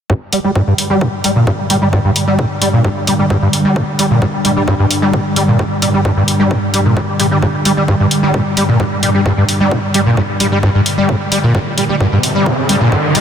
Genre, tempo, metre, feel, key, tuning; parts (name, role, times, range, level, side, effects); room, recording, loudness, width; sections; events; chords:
driving peak-time techno; 131 BPM; 4/4; straight; G minor; A4 = 443 Hz
overdriven acid bass; riff; 0.1-13.2 s; G2 to G3; -13 LUFS; equal; distortion, ensemble chorus, sidechain pumping, analog delay
analog drone; drone; 0.5-13.2 s; G2 to D3; -18 LUFS; equal; chorus, sidechain pumping
electronic kick drum; drums; 0.1-13.0 s; -20 LUFS; equal; high-pass filter on kick
electronic hi-hat; drums; 0.3-13.2 s; -18 LUFS; left 1 dB; sidechain pumping on hats
riser; sound effects; 11.7-13.2 s; -17 LUFS; right 1 dB
wet huge ambient reverb, RT60 7.3 s; dreamy mix soaked in reverb; -11 LUFS; side -8 dB against mid
0.1-13.2 A section
filter sweep on acid bass 0.1-13.2; riser 11.7-13.2
0.1 G5